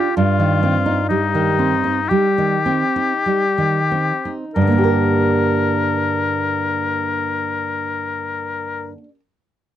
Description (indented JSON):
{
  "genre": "romantic duo for oboe and classical guitar",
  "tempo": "43-68 BPM",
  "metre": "4/4",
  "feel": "rubato",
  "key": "G minor",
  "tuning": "A4 = 440 Hz",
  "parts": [
    { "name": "warm oboe", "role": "melody", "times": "0.0-8.9 s", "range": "Eb4 to Bb4", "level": "-20 LUFS", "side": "left 6 dB", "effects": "none" },
    { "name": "nylon-string guitar", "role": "accompaniment", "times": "0.0-9.2 s", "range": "G2 to Bb4", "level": "-18 LUFS", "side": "right 2 dB", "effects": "none" }
  ],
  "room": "light reverb",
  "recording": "dry, close 1970s-style studio recording",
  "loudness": "-16 LUFS",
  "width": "side -11 dB against mid",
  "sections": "0.0-4.6 A section; 4.6-9.4 B section",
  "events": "slowing down 0.0-4.6",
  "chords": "0.2 Cm/G; 4.6 Gm",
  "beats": "| 0.16 1.09 2.09 3.24 | 4.55 5.78 7.02 8.23"
}